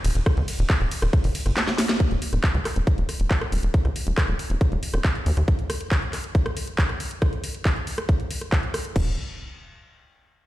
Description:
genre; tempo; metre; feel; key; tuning
psychedelic trance; 138 BPM; 4/4; straight; Eb minor; A4 = 440 Hz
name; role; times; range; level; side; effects
tight sequencer bass; bass; 0.0-5.4, 9.0-9.2 s; Eb1 to Eb2; -22 LUFS; equal; none
drum and bass drum kit; drums; 0.0-9.0 s; crash cymbal, handclaps, hi-hat, ride cymbal, rim click, snare drum; -28 LUFS; equal; overdrive
electronic kick drum; drums; 0.3-9.0 s; none; -20 LUFS; equal; none
room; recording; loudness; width
little or no reverb; played on a big sound system in a bare room, large studio reverb; -21 LUFS; side -16 dB against mid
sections
0.0-2.0 A section; 2.0-9.0 B section; 9.0-10.5 C section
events
drop 0.0-2.0; drum fill 1.6-2.0; band accent 1.9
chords
none

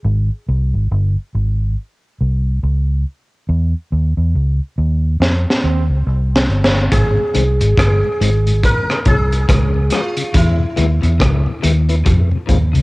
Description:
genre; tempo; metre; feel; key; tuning
dub reggae; 70 BPM; 4/4; swing 60% on 16ths; Ab major; A4 = 440 Hz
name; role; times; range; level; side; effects
vintage muted fingered electric bass; bass; 0.0-12.8 s; G1 to F2; -14 LUFS; equal; none
crunchy breakbeat drum kit; drums; 5.2-12.8 s; hi-hat, kick drum, rim click, snare drum; -17 LUFS; equal; none
clear trombone; second line; 5.6-5.9 s; C4; -27 LUFS; right 7 dB; dub echo
sitar; melody; 6.9-12.0 s; E4 to Bb4; -20 LUFS; equal; cassette tape, dub echo
electric guitar at the edge of break-up; riff; 6.9-12.8 s; G2 to F3; -25 LUFS; left 4 dB; none
mellow tonewheel organ; accompaniment; 7.2-12.8 s; E2 to F4; -24 LUFS; left 4 dB; slow rotary speaker, tape echo
room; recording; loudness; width
light reverb; home recording on cassette; -13 LUFS; side -22 dB against mid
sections
0.0-6.9 A section; 6.9-12.8 B section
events
break 0.1-6.9; drum fill 5.2-6.9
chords
0.1 Ab; 1.8 N.C.; 3.5 Dbmadd9; 5.2 F5; 6.9 Ab; 8.6 Db; 10.3 E; 12.1 Fm

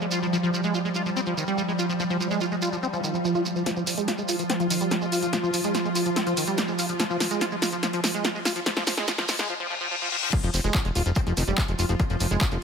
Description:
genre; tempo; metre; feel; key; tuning
psychedelic trance; 144 BPM; 4/4; straight; F minor; A4 = 441 Hz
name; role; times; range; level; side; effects
evolving wavetable pad; sustained chords; 0.0-12.6 s; F3 to F4; -28 LUFS; right 1 dB; ensemble chorus, built-in reverb, sidechain pumping
liquid acid bass; riff; 0.0-12.6 s; Eb3 to F4; -28 LUFS; moving between left 3 dB and right 3 dB; chorus, auto-pan, sidechain pumping, tape echo
shekere; percussion; 0.0-12.6 s; none; -34 LUFS; right 5 dB; none
swell, riser and reverse cymbal; sound effects; 3.0-10.3 s; none; -33 LUFS; left 3 dB; none
techno drum kit; drums; 3.7-12.6 s; crash cymbal, handclaps, hi-hat, snare drum; -28 LUFS; left 1 dB; overdrive, low-pass filter on snare, low-pass filter on hats, low-pass filter on cymbals
electronic kick drum; drums; 10.3-12.5 s; none; -25 LUFS; equal; none
fat analog bass; bass; 10.4-12.6 s; Eb1 to F1; -25 LUFS; left 1 dB; none
room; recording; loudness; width
moderate plate reverb, RT60 1.7 s; high-pass filter; -23 LUFS; side -6 dB against mid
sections
0.0-3.7 A section; 3.7-10.3 B section; 10.3-12.6 C section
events
filter sweep on acid bass 0.0-3.7, 3.7-10.3; filter sweep on ambient pad 0.0-3.7; swell 3.0-3.7; build-up 3.7-10.3; drum fill 3.7-9.5; filter sweep 3.7-10.3; reverse cymbal 9.5-10.3; drop 10.3-12.6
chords
0.0 F5

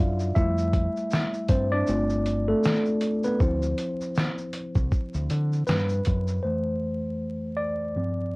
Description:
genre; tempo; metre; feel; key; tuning
lo-fi hip hop; 79 BPM; 4/4; swing 58% on 16ths; unclear; A4 = 440 Hz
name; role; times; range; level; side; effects
tine electric piano; accompaniment; 0.0-8.4 s; F2 to F5; -26 LUFS; equal; medium stereo tremolo, cassette tape, low-pass filter
deep dub fingered electric bass; bass; 0.0-6.4 s; G1 to D3; -26 LUFS; equal; none
lo-fi sampler-style drum kit; drums; 0.2-6.4 s; hi-hat, kick drum, shaker, snare drum; -25 LUFS; equal; overdrive
room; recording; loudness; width
moderate small room reverb, RT60 0.5 s; worn, warbling old tape, cassette tape, vinyl crackle, warbly pitch drift; -23 LUFS; side -27 dB against mid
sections
0.0-6.4 A section; 6.4-8.4 B section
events
tine electric piano solo 0.0-6.4, 6.4-8.4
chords
0.4 Fmaj9; 1.9 G7sus4; 3.4 Dm9; 6.4 Fmaj7

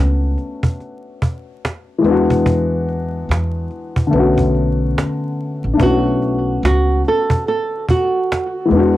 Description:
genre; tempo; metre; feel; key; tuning
lo-fi hip hop; 72 BPM; 4/4; swing 62% on 16ths; B dorian; A4 = 442 Hz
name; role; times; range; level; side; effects
dark upright piano; accompaniment; 0.0-9.0 s; D3 to F#4; -17 LUFS; left 3 dB; low-pass filter, cassette tape
upright bass; bass; 0.0-9.0 s; A1 to E2; -19 LUFS; equal; none
cajon; drums; 0.4-8.8 s; none; -19 LUFS; right 1 dB; cassette tape
flamenco guitar; melody; 5.8-8.5 s; F#4 to A4; -18 LUFS; right 2 dB; low-pass filter, cassette tape, analog delay
room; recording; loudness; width
moderate small room ambience, RT60 0.5 s; home recording on cassette, vinyl crackle; -15 LUFS; side -15 dB against mid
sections
0.0-5.8 A section; 5.8-9.0 A section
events
break 0.0-5.8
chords
0.0 Bm9; 2.0 E7; 4.1 Bm7; 5.8 Bm9

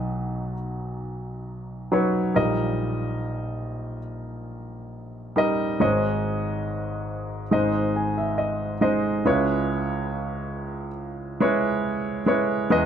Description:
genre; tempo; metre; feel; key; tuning
folk; 70 BPM; 4/4; straight; C# minor; A4 = 440 Hz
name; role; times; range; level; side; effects
warm grand piano; solo; 0.0-12.9 s; G#1 to G#5; -23 LUFS; equal; none
room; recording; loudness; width
light reverb; close, detailed microphones; -23 LUFS; side -8 dB against mid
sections
0.0-9.3 A section; 9.3-12.9 B section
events
none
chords
0.0 B; 2.4 D#/A#; 5.8 G#sus4; 7.5 G#; 9.3 C#m7

